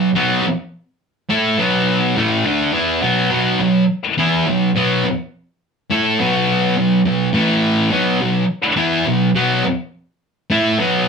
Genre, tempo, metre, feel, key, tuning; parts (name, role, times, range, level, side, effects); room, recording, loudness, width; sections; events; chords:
rock; 104 BPM; 4/4; straight; A4 = 440 Hz
thick fuzz guitar; solo; 0.0-11.1 s; A2 to A4; -14 LUFS; equal; distortion
wet studio ambience, RT60 0.5 s; band playing live in one room; -14 LUFS; side -5 dB against mid
0.0-11.1 A section
0.0 B5; 7.3 A5; 7.9 B5